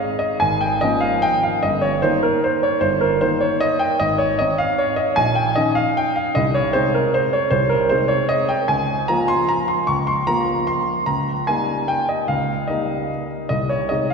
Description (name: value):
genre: classical, piano waltz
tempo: 151 BPM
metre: 3/4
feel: uneven beats, rubato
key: Ab major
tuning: A4 = 444 Hz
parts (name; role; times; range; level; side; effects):
- warm grand piano; solo; 0.0-14.1 s; G1 to Db6; -17 LUFS; equal; none
room: wet church reverb, RT60 3.4 s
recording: heard from further back in the room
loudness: -17 LUFS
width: side -5 dB against mid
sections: 0.0-14.1 A section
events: none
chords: 0.4 Bbm7/Ab; 1.6 Eb/G; 4.0 Ab; 5.2 Eb5/Bb; 6.3 Ab/C; 8.7 Bbm7/Db; 11.1 Eb7/Db; 13.5 Ab/C